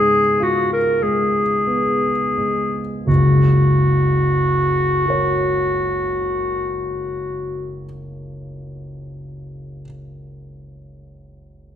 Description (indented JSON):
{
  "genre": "classical, romantic duo for clarinet and grand piano",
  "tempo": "27-36 BPM (dotted quarters)",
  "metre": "12/8",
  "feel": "rubato",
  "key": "F# major",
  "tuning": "A4 = 439 Hz",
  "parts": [
    { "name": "clear clarinet", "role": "melody", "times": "0.0-7.8 s", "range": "F#4 to A#4", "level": "-18 LUFS", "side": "left 1 dB", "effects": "none" },
    { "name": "dark concert grand piano", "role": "accompaniment", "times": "0.0-11.8 s", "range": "F#1 to C#5", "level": "-20 LUFS", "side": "equal", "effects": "none" }
  ],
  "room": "wet recital hall reverb, RT60 1.3 s",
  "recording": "none",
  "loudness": "-16 LUFS",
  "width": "side -10 dB against mid",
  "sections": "0.0-3.1 A section; 3.1-10.9 B section",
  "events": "slowing down 0.0-3.1",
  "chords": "0.0 C#7; 3.1 F#",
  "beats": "1.03 | 3.07 5.05 7.00 8.96"
}